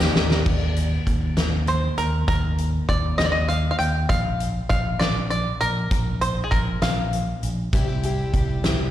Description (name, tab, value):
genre	indie folk with a building arrangement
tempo	66 BPM (dotted quarters)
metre	6/8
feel	straight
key	Eb major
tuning	A4 = 440 Hz
part	picked plugged-in twelve-string acoustic guitar	accompaniment	0.0-0.5, 7.7-8.9 s	C3 to G4	-30 LUFS	left 8 dB	slapback echo
part	ukulele	arpeggios	0.0-0.5 s	Eb4 to Eb5	-35 LUFS	right 5 dB	none
part	fingered electric bass	bass	0.0-8.9 s	Bb1 to Eb2	-23 LUFS	equal	none
part	loose indie drum kit	drums	0.0-8.8 s	crash cymbal, hi-hat, kick drum, snare drum	-24 LUFS	equal	none
part	bluegrass banjo	melody	1.7-7.5 s	Ab4 to G5	-25 LUFS	equal	slapback echo
part	fingerpicked steel-string acoustic guitar	accompaniment	7.7-8.9 s	C3 to G4	-32 LUFS	equal	slapback echo
room	little or no reverb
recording	live gig heard through the venue's PA, recital hall reverb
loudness	-20 LUFS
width	side -12 dB against mid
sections	0.5-8.9 A section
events	drum fill 0.0-0.5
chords	0.5 Eb5; 4.1 Bb5; 7.7 C